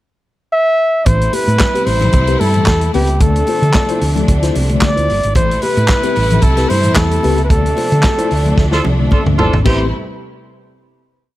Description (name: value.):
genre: disco.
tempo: 112 BPM.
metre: 4/4.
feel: straight.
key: A minor.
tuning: A4 = 436 Hz.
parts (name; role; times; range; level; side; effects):
warm flugelhorn; melody; 0.5-9.1 s; G4 to E5; -16 LUFS; equal; none.
mellow tine electric piano; accompaniment; 1.1-9.9 s; A2 to C5; -20 LUFS; left 4 dB; medium stereo tremolo.
clear studio string section; sustained chords; 1.1-9.9 s; C3 to E4; -22 LUFS; equal; none.
hollow-body short-scale fingered electric bass; bass; 1.1-9.9 s; G1 to D3; -16 LUFS; equal; none.
warm soul drum kit; drums; 1.1-9.8 s; crash cymbal, handclaps, hi-hat, kick drum, snare drum, toms; -16 LUFS; equal; none.
congas; percussion; 1.1-9.9 s; none; -26 LUFS; left 5 dB; none.
clear horn section; stabs; 8.7-9.8 s; A3 to C5; -20 LUFS; right 1 dB; none.
room: small room ambience.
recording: none.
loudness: -11 LUFS.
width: side -15 dB against mid.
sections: 0.0-1.1 pickup bar; 1.1-9.7 groove; 9.7-11.4 final chord.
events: band accent 7.5-9.7; drum fill 8.6-9.7.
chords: 0.0 N.C.; 1.1 Am7; 3.2 Dm7; 5.4 Am7; 7.5 Dm7; 9.7 Am7.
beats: 0.53 | 1.06 1.60 2.14 2.67 | 3.21 3.75 4.28 4.82 | 5.36 5.89 6.43 6.96 | 7.50 8.04 8.58 9.12 | 9.66.